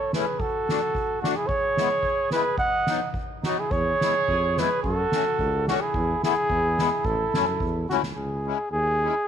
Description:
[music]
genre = alpine folk, alpine dance band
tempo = 108 BPM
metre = 2/4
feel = rubato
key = A major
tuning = A4 = 441 Hz
[part]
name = mellow flugelhorn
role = melody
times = 0.0-9.3 s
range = F#4 to F#5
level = -24 LUFS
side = equal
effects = none
[part]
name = mellow trumpet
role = second line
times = 0.0-7.9 s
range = D4 to D#5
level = -31 LUFS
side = right 14 dB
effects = tape echo
[part]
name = accordion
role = accompaniment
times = 0.1-9.1 s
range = F#3 to F#4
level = -29 LUFS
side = left 15 dB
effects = light tremolo tuning
[part]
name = soft-mallet drum kit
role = drums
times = 0.1-8.2 s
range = kick drum, snare drum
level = -31 LUFS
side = right 1 dB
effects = none
[part]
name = mellow tuba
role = bass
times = 3.7-9.1 s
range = A1 to F#2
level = -29 LUFS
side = equal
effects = none
[sound]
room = light reverb, studio ambience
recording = 1960s-style stereo with parts hard left and right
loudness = -22 LUFS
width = side -8 dB against mid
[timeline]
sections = 0.0-8.2 A section; 8.2-9.3 B section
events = drum fill 7.9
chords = 0.4 D; 1.5 E; 2.6 B; 3.7 E; 4.8 F#m; 5.9 Esus4; 6.5 E; 7.0 A; 8.2 C#m

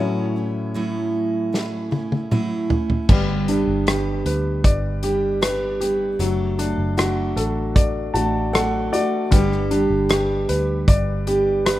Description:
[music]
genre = pop ballad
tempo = 77 BPM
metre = 4/4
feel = straight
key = unclear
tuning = A4 = 444 Hz
[part]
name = clear baby grand piano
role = accompaniment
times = 0.0-11.8 s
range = A2 to A5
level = -24 LUFS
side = left 2 dB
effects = none
[part]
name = picked steel-string acoustic guitar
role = arpeggios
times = 0.0-11.8 s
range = G2 to A4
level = -24 LUFS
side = right 3 dB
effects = none
[part]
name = loose indie drum kit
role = drums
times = 1.5-11.8 s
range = crash cymbal, hi-hat, kick drum, rim click, snare drum, toms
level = -19 LUFS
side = equal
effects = none
[part]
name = vintage muted fingered electric bass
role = bass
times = 3.1-11.8 s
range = F#1 to D2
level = -25 LUFS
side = equal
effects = none
[sound]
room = light reverb, small room ambience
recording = rough home demo mix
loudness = -18 LUFS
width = side -15 dB against mid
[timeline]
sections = 0.0-3.1 A section; 3.1-11.8 B section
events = grand piano solo 0.0-3.1; drum fill 1.5-3.1; grand piano fill 7.8-9.3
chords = 0.0 A6; 3.1 G; 6.2 D/F#; 9.3 G

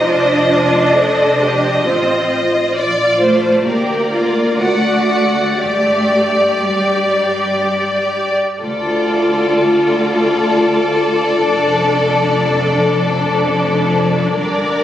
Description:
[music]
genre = classical, slow romantic movement for string orchestra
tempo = 58-66 BPM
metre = 3/4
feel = rubato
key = G minor, D minor from 8.6 s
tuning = A4 = 438 Hz
[part]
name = warm symphonic violin section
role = melody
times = 0.0-14.8 s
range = C5 to F#5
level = -21 LUFS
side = equal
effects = none
[part]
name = rich symphonic violin section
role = second line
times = 0.0-14.8 s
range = A4 to Eb5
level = -17 LUFS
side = left 1 dB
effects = none
[part]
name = rich studio viola section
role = accompaniment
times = 0.0-14.8 s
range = D4 to A4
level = -19 LUFS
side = equal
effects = none
[part]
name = dark studio double bass section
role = bass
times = 0.0-14.8 s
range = F1 to G2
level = -25 LUFS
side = equal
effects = none
[part]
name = rich symphonic cello section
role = bass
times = 0.0-14.8 s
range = D2 to D4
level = -19 LUFS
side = equal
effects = none
[sound]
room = wet scoring stage reverb, RT60 1.9 s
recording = recorded on a phone in the room, studio reverb, compression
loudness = -12 LUFS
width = side -11 dB against mid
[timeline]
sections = 0.0-8.6 A section; 8.6-14.8 B section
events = none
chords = 0.0 F7; 2.8 Bb; 3.7 Gm/D; 4.6 D; 5.6 G5; 8.6 Dm; 11.5 Dm/F; 14.3 Gm

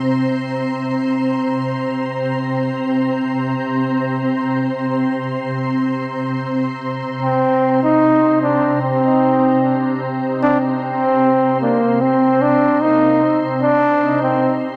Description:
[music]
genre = ambient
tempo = free time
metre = none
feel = none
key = unclear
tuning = A4 = 440 Hz
[part]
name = soft additive organ-like pad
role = sustained chords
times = 0.0-14.8 s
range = C3 to Bb5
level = -21 LUFS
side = equal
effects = ensemble chorus, built-in reverb
[part]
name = warm trombone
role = melody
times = 7.2-14.5 s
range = Bb3 to Eb4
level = -17 LUFS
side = equal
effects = dub echo
[sound]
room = wet echo chamber reverb, RT60 2.2 s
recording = none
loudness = -17 LUFS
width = mono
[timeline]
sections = 0.0-14.8 A section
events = none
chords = 0.0 Bbsus2/C

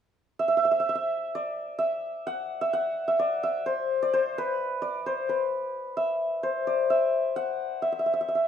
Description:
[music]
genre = indian classical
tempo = 130 BPM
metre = 4/4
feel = straight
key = unclear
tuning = A4 = 444 Hz
[part]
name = santur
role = solo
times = 0.4-8.5 s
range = B4 to F#5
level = -25 LUFS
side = equal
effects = none
[sound]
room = moderate recital hall reverb, RT60 1.3 s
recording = minimal, uncompressed stereo recording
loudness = -25 LUFS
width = side -8 dB against mid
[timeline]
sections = 0.4-8.5 A section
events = none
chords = none

